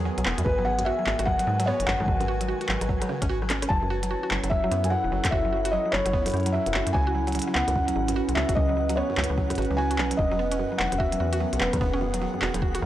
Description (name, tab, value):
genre	IDM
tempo	148 BPM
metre	4/4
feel	swing 62% on 16ths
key	F# dorian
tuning	A4 = 440 Hz
part	warbly tape-like pad	sustained chords	0.0-12.9 s	C#3 to B4	-31 LUFS	right 1 dB	chorus, built-in reverb, sidechain pumping
part	mallet-like synth pluck	arpeggios	0.0-12.9 s	F#2 to F#4	-31 LUFS	right 3 dB	chorus, cassette tape
part	metallic FM bass	bass	0.0-12.9 s	E1 to G#2	-29 LUFS	equal	none
part	flickering grainy texture	texture	0.0-12.9 s	F#5 to G#5	-40 LUFS	equal	built-in reverb
part	glitchy drum kit	drums	0.2-12.9 s	handclaps, hi-hat, rim click	-30 LUFS	equal	studio reverb
part	felt-muted upright piano	melody	0.4-12.8 s	B4 to A5	-28 LUFS	left 1 dB	analog delay
part	electronic kick drum	drums	0.5-12.7 s	none	-28 LUFS	equal	studio reverb
room	light reverb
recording	dry, gritty hardware recording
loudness	-22 LUFS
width	side -13 dB against mid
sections	0.0-12.9 A section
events	drum fill 3.4-3.7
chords	0.5 G#m7; 3.7 F#m7; 6.9 C#m7; 10.2 Emaj7